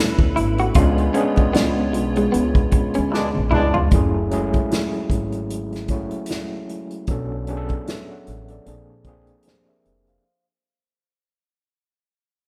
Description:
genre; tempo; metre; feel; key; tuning
R&B, neo-soul; 76 BPM; 4/4; swing 58% on 16ths; F# minor; A4 = 440 Hz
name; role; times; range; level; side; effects
overdriven tine electric piano; accompaniment; 0.0-10.4 s; E#3 to F#5; -26 LUFS; equal; fast tremolo
hollow soft pad; sustained chords; 0.0-3.9 s; E#4 to B5; -35 LUFS; equal; ensemble chorus
upright bass; bass; 0.2-10.2 s; E#1 to D2; -27 LUFS; equal; none
unplugged drum kit; drums; 0.2-10.2 s; hi-hat, kick drum, snare drum, toms; -23 LUFS; equal; none
electric guitar through a small old amp; second line; 0.4-3.9 s; G#3 to F#4; -27 LUFS; equal; spring reverb
brilliant trombone section; stabs; 3.1-3.8 s; B2 to D4; -26 LUFS; equal; slapback echo
room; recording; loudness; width
light reverb, small room ambience; rough home demo mix; -20 LUFS; mono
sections
0.0-3.9 A section; 3.9-10.2 B section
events
band accent 0.8-3.9; drum fill 3.1-3.9; fade-out 3.9-10.2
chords
0.0 Bm9; 0.8 C#7b9; 3.9 F#m9; 7.1 Bm7; 8.6 A#9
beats
| 0.75 1.54 2.33 3.12 | 3.91 4.70 5.49 6.28 | 7.07 7.86 8.65 9.44

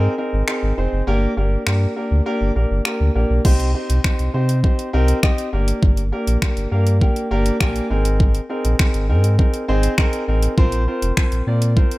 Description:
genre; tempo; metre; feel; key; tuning
dance-pop; 101 BPM; 4/4; straight; C minor; A4 = 436 Hz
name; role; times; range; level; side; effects
warm concert grand piano; accompaniment; 0.0-12.0 s; Bb3 to Ab5; -22 LUFS; equal; sidechain pumping
sub bass with octave; bass; 0.0-11.8 s; F1 to C3; -18 LUFS; equal; sidechain pumping
pop drum kit; drums; 0.5-12.0 s; crash cymbal, finger snaps, hi-hat, kick drum; -18 LUFS; equal; overdrive
room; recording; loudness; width
little or no reverb; none; -16 LUFS; side -19 dB against mid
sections
0.0-3.4 A section; 3.4-12.0 B section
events
grand piano fill 6.4-8.2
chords
0.0 Abadd9; 1.1 Gm; 3.4 Cm; 5.5 Gm; 7.9 Abadd9; 10.6 Bbsus2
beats
0.48 | 1.07 1.67 2.26 2.85 | 3.45 4.04 4.64 5.23 | 5.83 6.42 7.01 7.61 | 8.20 8.80 9.39 9.98 | 10.58 11.17 11.77

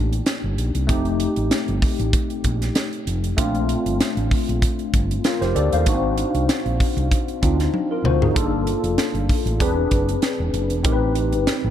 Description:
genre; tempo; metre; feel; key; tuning
polished 1980s jazz-funk pop; 96 BPM; 4/4; swing 54% on 16ths; unclear; A4 = 439 Hz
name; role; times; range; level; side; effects
tine electric piano; accompaniment; 0.0-11.7 s; A3 to F5; -22 LUFS; left 2 dB; slow stereo tremolo, ensemble chorus
overdriven fingered electric bass; bass; 0.0-11.7 s; E1 to Eb2; -23 LUFS; equal; none
crisp fusion drum kit; drums; 0.1-11.6 s; hi-hat, kick drum, snare drum, toms; -22 LUFS; equal; none
room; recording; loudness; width
little or no reverb; dark, warm production; -18 LUFS; side -10 dB against mid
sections
0.0-11.7 A section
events
drum fill 7.7-8.4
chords
0.0 Cm9 (rootless); 0.9 F9; 3.4 Bbmaj9; 5.9 Ab7#11; 8.4 Gm7; 9.6 E7b13; 10.9 Am7b5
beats
0.27 | 0.89 1.51 2.13 2.75 | 3.38 4.00 4.62 5.25 | 5.87 6.49 7.11 7.74 | 8.36 8.98 9.61 10.23 | 10.85 11.47

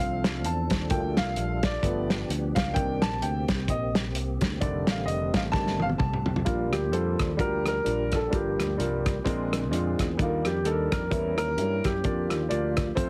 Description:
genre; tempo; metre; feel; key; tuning
uptempo gospel; 129 BPM; 4/4; swing 57% on 8ths; Bb major; A4 = 440 Hz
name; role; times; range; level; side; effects
warm upright piano; accompaniment; 0.0-13.1 s; G2 to A5; -32 LUFS; equal; none
tonewheel organ; sustained chords; 0.0-13.1 s; C3 to D5; -39 LUFS; equal; none
picked electric bass; bass; 0.0-13.1 s; F1 to G2; -33 LUFS; equal; none
warm soul drum kit; drums; 0.2-13.1 s; hi-hat, kick drum, rim click, snare drum, toms; -31 LUFS; equal; none
warm grand piano; melody; 6.5-12.9 s; F4 to Bb4; -32 LUFS; equal; none
room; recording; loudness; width
little or no reverb; heavily compressed radio sound, multiband compression; -27 LUFS; mono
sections
0.0-6.5 A section; 6.5-13.1 B section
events
upright piano solo 0.0-6.5; drum fill 5.5-6.5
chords
0.0 Dm7; 0.9 Gm9; 1.8 G7; 2.8 Cm7; 4.6 F13; 6.5 Bb6; 8.3 Gm7; 9.3 Bb9; 10.2 Ebmaj7; 11.1 Edim7; 12.0 Bb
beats
0.45 | 0.91 1.37 1.83 2.30 | 2.76 3.23 3.69 4.15 | 4.62 5.08 5.54 6.01 | 6.47 6.93 7.40 7.86 | 8.33 8.79 9.26 9.72 | 10.19 10.65 11.12 11.58 | 12.05 12.51 12.97

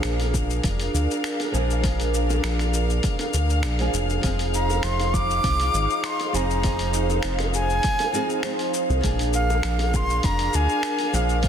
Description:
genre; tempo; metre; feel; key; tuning
sunset chillout; 100 BPM; 4/4; straight; unclear; A4 = 445 Hz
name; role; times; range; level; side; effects
flamenco guitar; accompaniment; 0.0-11.5 s; F3 to C5; -30 LUFS; right 4 dB; auto-pan, low-pass filter, digital delay
dark studio string section; sustained chords; 0.0-11.5 s; D4 to F5; -28 LUFS; left 1 dB; none
round analog bass; bass; 0.0-11.5 s; F1 to D2; -24 LUFS; equal; none
dusty soul sampler-style drum kit; drums; 0.0-11.5 s; finger snaps, hi-hat, shaker; -32 LUFS; left 3 dB; small room ambience, soft clipping on snare
bongos; percussion; 0.2-11.1 s; none; -36 LUFS; right 1 dB; none
electronic kick drum; drums; 0.3-11.5 s; none; -26 LUFS; equal; overdrive, small room ambience
breathy bright concert flute; melody; 4.6-11.5 s; F5 to D6; -26 LUFS; equal; tape echo
room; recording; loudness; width
moderate scoring stage reverb, RT60 1.9 s, studio reverb; dense, heavily limited modern master; -20 LUFS; side -8 dB against mid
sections
0.0-11.5 A section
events
none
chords
0.0 Bb7; 4.2 Fm7; 9.0 Bb7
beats
0.04 0.64 1.24 | 1.84 2.44 3.04 3.64 | 4.24 4.84 5.44 6.04 | 6.64 7.24 7.84 8.44 | 9.04 9.64 10.24 10.84 | 11.44

